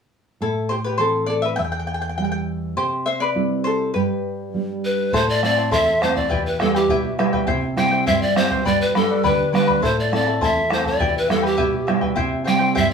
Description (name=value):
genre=andean folk, Andean ensemble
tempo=102 BPM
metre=2/4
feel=straight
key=unclear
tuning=A4 = 440 Hz
part: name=charango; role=accompaniment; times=0.4-12.9 s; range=E4 to B5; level=-22 LUFS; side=left 3 dB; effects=none
part: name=nylon-string guitar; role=accompaniment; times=0.4-12.9 s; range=E2 to E4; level=-23 LUFS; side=right 4 dB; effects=none
part: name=breathy polished pan flute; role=melody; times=4.8-12.9 s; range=G4 to G5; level=-20 LUFS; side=left 1 dB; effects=none
part: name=bombo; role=percussion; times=5.1-12.9 s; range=none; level=-26 LUFS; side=left 1 dB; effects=none
room=moderate studio reverb, RT60 0.6 s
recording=band playing live in one room, studio ambience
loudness=-18 LUFS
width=side -6 dB against mid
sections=0.4-5.1 A section; 5.1-12.9 B section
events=charango solo 0.4-5.1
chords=0.4 Am; 1.6 Em; 2.8 C; 4.0 G; 5.1 Am; 6.3 Em; 7.5 C; 8.7 G; 9.8 Am; 11.0 Em; 12.2 C